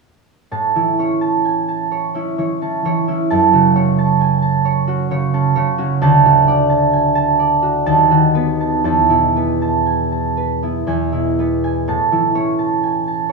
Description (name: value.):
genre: classical, solo harp piece.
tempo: 59-67 BPM.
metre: 3/4.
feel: rubato.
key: A major.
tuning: A4 = 440 Hz.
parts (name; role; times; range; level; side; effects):
concert harp; solo; 0.5-13.3 s; D2 to A5; -14 LUFS; right 3 dB; none.
room: light reverb.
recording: none.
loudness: -14 LUFS.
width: side -3 dB against mid.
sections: 0.5-13.3 A section.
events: none.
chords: 0.5 A; 3.3 F#m; 6.0 D; 7.9 B7/D#; 8.9 Esus4; 10.9 E; 11.9 A.